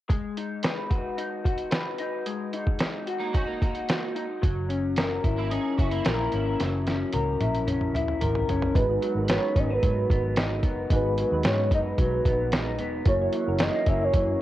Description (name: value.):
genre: indie pop, bedroom pop.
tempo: 111 BPM.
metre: 4/4.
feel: straight.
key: G# minor.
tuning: A4 = 439 Hz.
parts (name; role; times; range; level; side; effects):
electric guitar through a small old amp; accompaniment; 0.1-14.4 s; F#2 to B4; -29 LUFS; left 3 dB; analog chorus, warbly pitch drift, cassette tape.
lo-fi sampler-style drum kit; drums; 0.1-14.3 s; hi-hat, kick drum, snare drum, toms; -26 LUFS; equal; cassette tape.
electric guitar at the edge of break-up; second line; 3.2-6.7 s; A#3 to G#4; -36 LUFS; right 3 dB; ensemble chorus, cassette tape, tape echo.
vintage muted fingered electric bass; bass; 4.4-14.4 s; E1 to G#2; -29 LUFS; equal; tube saturation.
soft octave-layered synth lead; melody; 8.7-14.4 s; B4 to E5; -27 LUFS; equal; tremolo, lush chorus, cassette tape.
soft electric-piano-like synth keys; accompaniment; 8.7-14.4 s; G#3 to C#5; -30 LUFS; right 4 dB; chorus, phaser, cassette tape.
room: light reverb, digital ambience.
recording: home recording on cassette.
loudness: -23 LUFS.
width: side -14 dB against mid.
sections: 0.1-8.7 A section; 8.7-14.4 B section.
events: drum fill 6.6-8.7.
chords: 0.1 G#m7; 4.4 F#7; 8.7 G#m7; 13.1 F#7.